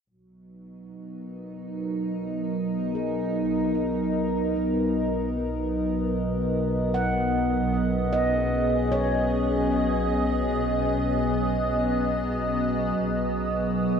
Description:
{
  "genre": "ambient",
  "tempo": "75 BPM",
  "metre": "4/4",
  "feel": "straight",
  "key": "B major",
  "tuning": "A4 = 440 Hz",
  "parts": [
    { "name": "evolving wavetable pad", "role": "sustained chords", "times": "0.9-14.0 s", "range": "F#3 to D#5", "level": "-24 LUFS", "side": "equal", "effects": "chorus, built-in reverb" },
    { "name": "muted studio double bass section", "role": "bass", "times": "0.1-14.0 s", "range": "B1", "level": "-32 LUFS", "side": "equal", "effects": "none" },
    { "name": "handpan", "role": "arpeggios", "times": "2.9-10.8 s", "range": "B3 to F#5", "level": "-31 LUFS", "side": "right 2 dB", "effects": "tape echo" },
    { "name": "analog drone", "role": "drone", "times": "13.8-14.0 s", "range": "B3", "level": "-39 LUFS", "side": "right 1 dB", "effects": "none" }
  ],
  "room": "wet cathedral reverb, RT60 6.0 s",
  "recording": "dark, warm production",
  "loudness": "-23 LUFS",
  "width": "side -7 dB against mid",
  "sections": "0.1-13.0 A section; 13.0-14.0 A section",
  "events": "fade-in on handpan 0.1-13.0; fade-in on double bass section 0.1-13.0; filter sweep on ambient pad 0.1-13.0",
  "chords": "0.1 Bmaj7"
}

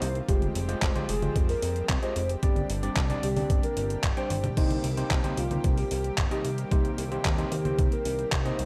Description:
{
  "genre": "italo disco",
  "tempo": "112 BPM",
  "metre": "4/4",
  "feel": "straight",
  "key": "C minor",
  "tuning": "A4 = 441 Hz",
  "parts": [
    { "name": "soft octave-layered synth lead", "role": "melody", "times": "0.0-8.7 s", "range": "Eb4 to C5", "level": "-36 LUFS", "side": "equal", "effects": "chorus, phaser, digital delay" },
    { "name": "lush unison pad", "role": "sustained chords", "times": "0.0-8.7 s", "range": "C3 to G4", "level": "-40 LUFS", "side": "equal", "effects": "chorus" },
    { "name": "overdriven tine electric piano", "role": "stabs", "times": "0.0-8.6 s", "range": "C3 to G5", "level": "-37 LUFS", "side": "equal", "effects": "none" },
    { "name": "fat analog bass", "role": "bass", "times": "0.0-8.7 s", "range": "F1 to Eb2", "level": "-34 LUFS", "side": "equal", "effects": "none" },
    { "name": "detuned 8-bit digital drum machine", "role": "drums", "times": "0.0-8.7 s", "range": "congas, crash cymbal, handclaps, hi-hat, toms", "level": "-35 LUFS", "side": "equal", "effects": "overdrive, gated reverb" },
    { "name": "electronic kick drum", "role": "drums", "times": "0.3-8.4 s", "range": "none", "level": "-29 LUFS", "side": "equal", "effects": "overdrive" }
  ],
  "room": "little or no reverb",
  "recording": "none",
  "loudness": "-27 LUFS",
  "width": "mono",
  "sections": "0.0-8.7 A section",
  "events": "drum fill 4.3",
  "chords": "0.3 Fmadd9; 2.4 Gsus4; 4.6 Cm7"
}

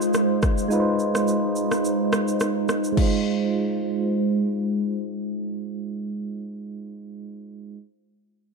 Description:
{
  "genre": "afrobeats",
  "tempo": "106 BPM",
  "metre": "4/4",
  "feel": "swing 55% on 16ths",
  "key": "Ab major",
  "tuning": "A4 = 439 Hz",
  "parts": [
    { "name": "soft electric-piano-like synth keys", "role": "accompaniment", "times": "0.0-7.8 s", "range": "Ab3 to C5", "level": "-26 LUFS", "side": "right 4 dB", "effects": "chorus, tremolo, low-pass filter" },
    { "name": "glassy FM pad", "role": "sustained chords", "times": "0.0-6.0 s", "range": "Ab3 to C5", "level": "-25 LUFS", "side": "left 2 dB", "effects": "ensemble chorus, built-in reverb, low-pass filter" },
    { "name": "afro-pop drum kit", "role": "drums", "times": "0.0-3.1 s", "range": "crash cymbal, kick drum, rim click, shaker", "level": "-26 LUFS", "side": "equal", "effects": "none" }
  ],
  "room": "light reverb, digital ambience",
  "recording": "dark, warm production",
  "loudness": "-21 LUFS",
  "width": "side -4 dB against mid",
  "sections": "0.0-3.0 A section; 3.0-5.2 B section",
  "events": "filter sweep 0.0-3.0; kick muted 0.7-3.0",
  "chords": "0.0 Ab6"
}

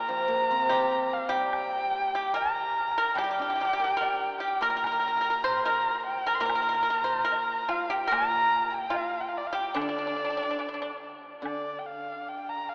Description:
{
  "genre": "chinese traditional, Chinese chamber ensemble",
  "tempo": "72 BPM",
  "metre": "2/4",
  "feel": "rubato",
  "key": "unclear",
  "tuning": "A4 = 439 Hz",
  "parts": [
    { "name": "dark erhu", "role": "melody", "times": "0.0-12.7 s", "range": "D5 to C6", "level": "-28 LUFS", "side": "equal", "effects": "none" },
    { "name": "pipa", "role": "second line", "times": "0.0-10.9 s", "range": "D4 to C5", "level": "-30 LUFS", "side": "equal", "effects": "none" },
    { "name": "guzheng", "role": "accompaniment", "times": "0.0-12.7 s", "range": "Bb2 to D5", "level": "-35 LUFS", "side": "equal", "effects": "none" },
    { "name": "woodblock", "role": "percussion", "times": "0.7-11.6 s", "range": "none", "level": "-41 LUFS", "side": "equal", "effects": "none" }
  ],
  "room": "wet cathedral reverb, RT60 5.1 s",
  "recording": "in a vast, echoing space, AM radio sound",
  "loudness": "-25 LUFS",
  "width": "side -34 dB against mid",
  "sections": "0.0-11.4 A section; 11.4-12.7 B section",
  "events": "none",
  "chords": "none"
}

